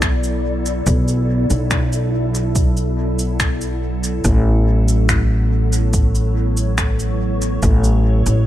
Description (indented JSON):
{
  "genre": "ambient dub",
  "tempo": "71 BPM",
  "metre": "4/4",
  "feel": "straight",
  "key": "B minor",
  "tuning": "A4 = 440 Hz",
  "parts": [
    { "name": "soft additive organ-like pad", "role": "sustained chords", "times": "0.0-8.5 s", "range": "F#3 to D5", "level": "-23 LUFS", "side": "equal", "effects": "ensemble chorus, built-in reverb" },
    { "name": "upright bass", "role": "bass", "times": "0.0-8.5 s", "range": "A1 to B1", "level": "-17 LUFS", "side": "equal", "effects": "none" },
    { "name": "electronic finger snaps and shaker", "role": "drums", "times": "0.0-8.4 s", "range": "none", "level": "-23 LUFS", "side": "equal", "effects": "dub echo" },
    { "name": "electronic kick drum", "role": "drums", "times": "0.0-7.8 s", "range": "none", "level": "-19 LUFS", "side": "equal", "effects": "none" }
  ],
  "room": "digital ambience",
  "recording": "none",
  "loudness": "-15 LUFS",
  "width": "side -13 dB against mid",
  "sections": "0.0-8.5 A section",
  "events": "none",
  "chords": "0.0 Bm; 4.2 A",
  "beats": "0.02 | 0.86 1.71 2.56 3.40 | 4.25 5.09 5.93 6.78 | 7.62"
}